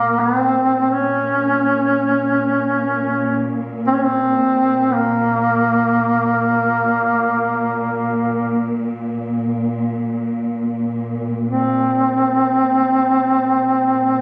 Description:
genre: caucasian folk, Caucasian lament.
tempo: free time.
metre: none.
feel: none.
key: Bb minor.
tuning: A4 = 443 Hz.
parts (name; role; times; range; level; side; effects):
warm duduk; melody; 0.0-14.2 s; Bb3 to Db4; -18 LUFS; equal; none.
muted studio string section; drone; 0.0-14.2 s; Bb2; -25 LUFS; equal; none.
room: moderate scoring stage reverb, RT60 1.7 s.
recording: recorded on a phone in the room, club reverb.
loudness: -18 LUFS.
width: mono.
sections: 0.0-14.2 A section.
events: none.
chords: none.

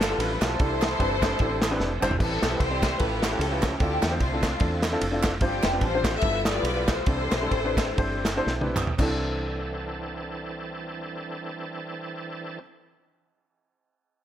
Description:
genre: uptempo gospel.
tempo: 112-150 BPM.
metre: 4/4.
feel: swing 56% on 8ths.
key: C major.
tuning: A4 = 440 Hz.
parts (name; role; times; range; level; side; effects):
warm studio string section; melody; 0.0-8.5 s; A3 to E5; -29 LUFS; left 3 dB; none.
warm upright piano; accompaniment; 0.0-12.6 s; C2 to D5; -30 LUFS; equal; none.
bright tonewheel organ; sustained chords; 0.0-12.6 s; D3 to E5; -36 LUFS; right 3 dB; slow rotary speaker, overdrive, chorus vibrato.
fingered electric bass; bass; 0.0-12.6 s; F1 to E2; -31 LUFS; equal; none.
warm soul drum kit; drums; 0.0-9.1 s; crash cymbal, kick drum, ride cymbal, snare drum, toms; -27 LUFS; equal; none.
group handclap; percussion; 0.0-9.3 s; none; -35 LUFS; right 3 dB; none.
room: light reverb.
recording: none.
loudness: -23 LUFS.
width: side -10 dB against mid.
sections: 0.0-2.2 A section; 2.2-9.0 B section; 9.0-13.3 C section.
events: drum fill 1.8-2.2, 8.5-9.0; slowing down 5.4-9.0.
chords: 0.0 G13; 0.6 C69; 2.2 Am9; 3.0 A7b13; 3.8 Dm9; 5.4 G7sus4; 6.2 G13; 7.1 C69.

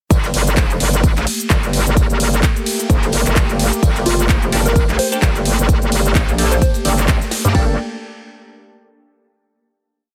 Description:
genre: bass house.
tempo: 129 BPM.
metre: 4/4.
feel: swing 56% on 16ths.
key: G minor.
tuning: A4 = 441 Hz.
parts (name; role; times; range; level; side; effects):
sweeping resonant pad; sustained chords; 0.1-7.8 s; A3 to G4; -27 LUFS; equal; chorus, sidechain pumping.
metallic wobble bass; bass; 0.1-7.8 s; F1 to G2; -19 LUFS; equal; chorus, overdrive, sidechain pumping.
house drum kit; drums; 0.1-7.7 s; hi-hat, kick drum; -17 LUFS; equal; none.
house drum kit; drums; 0.1-7.5 s; handclaps, hi-hat, ride cymbal, shaker; -24 LUFS; equal; none.
natural country drum kit; drums; 0.1-7.5 s; hi-hat, snare drum, tambourine; -34 LUFS; equal; none.
soft struck synth lead; melody; 4.1-6.7 s; F4 to C5; -25 LUFS; equal; chorus, tape echo.
band-passed chord stab; stabs; 4.5-7.7 s; Bb3 to A4; -28 LUFS; equal; phaser, sidechain pumping, tape echo.
room: little or no reverb.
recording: heavily compressed radio sound.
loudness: -16 LUFS.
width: mono.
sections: 0.1-7.5 drop; 7.5-9.4 final chord.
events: drop 0.1-7.5.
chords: 0.1 Gmadd9.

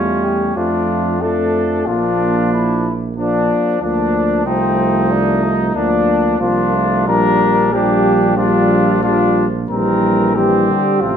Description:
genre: classical, brass quintet.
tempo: 92 BPM.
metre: 4/4.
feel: straight.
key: unclear.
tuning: A4 = 441 Hz.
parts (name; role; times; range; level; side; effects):
dark cornet; melody; 0.0-11.2 s; C4 to Bb4; -18 LUFS; left 6 dB; none.
warm trumpet; second line; 0.0-11.2 s; C4 to Eb4; -22 LUFS; right 4 dB; none.
mellow French horn; accompaniment; 0.0-11.2 s; F3 to Bb3; -20 LUFS; left 1 dB; none.
warm euphonium; accompaniment; 0.0-11.2 s; C3 to G3; -20 LUFS; right 2 dB; none.
mellow tuba; bass; 0.0-11.2 s; A1 to F2; -20 LUFS; right 4 dB; none.
room: wet stone room reverb, RT60 1.0 s.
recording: none.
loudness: -13 LUFS.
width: side -8 dB against mid.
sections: 0.0-11.2 A section.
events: none.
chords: 0.0 A7/E; 0.6 Dm/F; 1.9 Bb; 4.5 F7/C; 5.8 Bb/D; 7.1 Gm7/Bb; 9.7 C7/Bb.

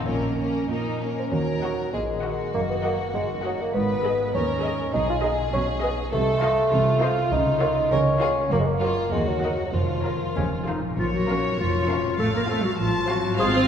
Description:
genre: cinematic, playful, whimsical film cue.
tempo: 100 BPM.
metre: 2/4.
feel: straight.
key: Eb minor, Bb minor from 6.1 s.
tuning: A4 = 440 Hz.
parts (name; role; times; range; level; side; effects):
rich chamber violin section; melody; 0.0-13.7 s; F4 to A5; -32 LUFS; left 2 dB; none.
xylophone with soft rubber mallets; melody; 0.0-0.7 s; Db5; -42 LUFS; left 1 dB; none.
warm symphonic violin section; second line; 0.0-13.7 s; Db4 to Bb5; -34 LUFS; left 1 dB; none.
rich chamber viola section; accompaniment; 0.0-13.7 s; Bb3 to C5; -33 LUFS; right 1 dB; none.
concert harp; arpeggios; 0.0-13.7 s; Gb2 to Eb5; -32 LUFS; left 4 dB; none.
dark chamber double bass section; bass; 0.1-13.7 s; F1 to Eb2; -30 LUFS; right 2 dB; none.
warm studio cello section; bass; 0.1-13.7 s; Eb2 to C4; -29 LUFS; right 2 dB; none.
mellow bassoon; accompaniment; 1.2-10.4 s; F3 to F4; -24 LUFS; right 1 dB; none.
mellow clarinet; second line; 10.4-13.6 s; Db4 to C5; -26 LUFS; left 2 dB; none.
room: wet church reverb, RT60 2.6 s.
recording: recorded in a church or concert hall.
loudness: -21 LUFS.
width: side -8 dB against mid.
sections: 0.0-1.3 A section; 1.3-11.0 B section; 11.0-13.7 A section.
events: none.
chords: 0.1 Bbm; 1.3 Ebm; 2.5 Ebm/Gb; 3.7 Abm; 4.9 Abm/Cb; 6.1 F7/C; 7.3 Bbm/Db; 8.5 Gbmaj7; 9.1 Ebm; 9.7 Bbm/F; 10.4 F; 11.0 Bbm; 12.2 F/A.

